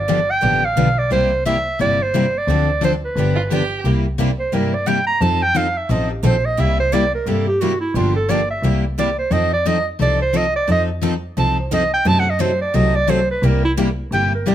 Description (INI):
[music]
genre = acoustic string swing (jazz manouche)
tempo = 175 BPM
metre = 4/4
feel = swing 60% on 8ths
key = C mixolydian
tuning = A4 = 440 Hz
[part]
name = breathy clarinet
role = melody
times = 0.0-14.5 s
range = E4 to Bb5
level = -19 LUFS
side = right 2 dB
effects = plate reverb
[part]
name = clear double bass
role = bass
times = 0.0-14.5 s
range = G1 to G2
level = -21 LUFS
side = equal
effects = none
[part]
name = picked steel-string acoustic guitar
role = accompaniment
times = 0.1-14.5 s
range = C3 to A4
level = -21 LUFS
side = left 5 dB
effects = none
[part]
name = picked steel-string acoustic guitar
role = accompaniment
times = 0.1-14.5 s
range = C3 to A4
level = -27 LUFS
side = right 8 dB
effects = none
[part]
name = warm violin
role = second line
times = 3.4-3.8 s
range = F4 to G4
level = -25 LUFS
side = right 4 dB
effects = slapback echo
[sound]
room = moderate studio reverb, RT60 0.5 s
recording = none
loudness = -15 LUFS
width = side -11 dB against mid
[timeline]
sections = 0.0-3.8 A section; 3.8-14.5 B section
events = clarinet solo 3.8-14.5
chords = 0.0 G7; 1.1 C7; 2.5 Dm7; 3.2 G7; 3.8 C7; 5.2 F7; 6.6 C7; 7.9 Gm7; 8.6 C7; 9.3 F7; 12.1 F#dim7; 13.4 C7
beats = 0.08 0.42 0.76 | 1.11 1.45 1.79 2.13 | 2.48 2.82 3.16 3.50 | 3.85 4.19 4.53 4.87 | 5.21 5.56 5.90 6.24 | 6.58 6.92 7.26 7.61 | 7.95 8.29 8.63 8.97 | 9.31 9.66 10.00 10.34 | 10.68 11.03 11.37 11.71 | 12.05 12.40 12.74 13.08 | 13.43 13.77 14.11 14.46